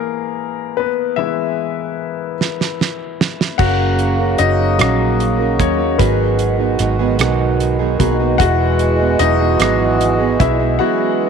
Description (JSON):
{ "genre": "six-eight pop ballad", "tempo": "50 BPM (dotted quarters)", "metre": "6/8", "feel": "straight", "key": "unclear", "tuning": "A4 = 440 Hz", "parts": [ { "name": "clear concert grand piano", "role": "accompaniment", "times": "0.0-11.3 s", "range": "E3 to F#5", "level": "-19 LUFS", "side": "left 12 dB", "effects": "none" }, { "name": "damped 70s drum kit", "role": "drums", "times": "2.4-10.6 s", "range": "crash cymbal, hi-hat, kick drum, rim click, snare drum", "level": "-18 LUFS", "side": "right 5 dB", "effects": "none" }, { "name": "pedal harmonium", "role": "sustained chords", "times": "3.6-11.3 s", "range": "B2 to F#4", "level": "-20 LUFS", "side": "right 3 dB", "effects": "none" }, { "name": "fingerpicked plugged-in steel-string acoustic guitar", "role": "arpeggios", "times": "3.6-11.3 s", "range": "G#2 to A#4", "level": "-20 LUFS", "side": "right 15 dB", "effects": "tape echo" }, { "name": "vintage muted fingered electric bass", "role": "bass", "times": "3.6-10.8 s", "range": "E1 to D#2", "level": "-18 LUFS", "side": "right 1 dB", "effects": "none" } ], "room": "moderate spring reverb, RT60 2.2 s", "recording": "1960s-style stereo with parts hard left and right", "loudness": "-14 LUFS", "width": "side -6 dB against mid", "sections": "0.0-3.6 A section; 3.6-11.3 B section", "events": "grand piano solo 0.0-3.6, 3.6-11.3; drum fill 2.4-3.6", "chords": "0.0 E; 3.6 F#; 6.0 G#m7; 8.4 Eadd9" }